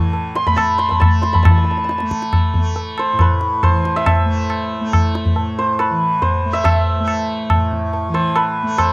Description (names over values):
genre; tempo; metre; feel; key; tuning
indian classical, Hindustani; 139 BPM; 3/4; straight; unclear; A4 = 440 Hz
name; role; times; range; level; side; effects
santur; melody; 0.0-8.9 s; B4 to C6; -19 LUFS; equal; cassette tape
tanpura; drone; 0.0-8.9 s; A2 to A3; -23 LUFS; equal; plate reverb
tabla; percussion; 0.1-8.9 s; none; -16 LUFS; equal; none
room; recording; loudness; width
light reverb; home recording on cassette; -14 LUFS; side -23 dB against mid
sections
0.0-1.5 A section; 1.5-8.9 B section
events
speeding up 0.0-8.9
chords
none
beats
| 0.14 0.58 1.02 | 1.46 1.89 2.33 | 2.77 3.20 3.64 | 4.07 4.50 4.94 | 5.37 5.80 6.23 | 6.66 7.08 7.51 | 7.94 8.36 8.79